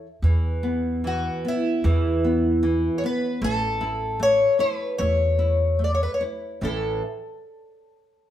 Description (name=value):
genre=fado-style ballad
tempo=75 BPM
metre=4/4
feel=rubato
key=A major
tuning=A4 = 440 Hz
part: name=nylon-string guitar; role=accompaniment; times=0.0-7.0 s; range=A2 to E4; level=-28 LUFS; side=equal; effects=none
part: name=upright bass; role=bass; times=0.2-7.0 s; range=A1 to E2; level=-24 LUFS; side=right 1 dB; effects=none
part: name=fingerpicked twelve-string acoustic guitar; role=melody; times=1.1-7.0 s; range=E4 to D5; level=-23 LUFS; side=left 1 dB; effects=none
room=moderate studio reverb, RT60 0.9 s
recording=band playing live in one room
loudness=-20 LUFS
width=side -11 dB against mid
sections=0.2-6.6 A section; 6.6-8.3 B section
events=none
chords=0.2 E5; 3.4 A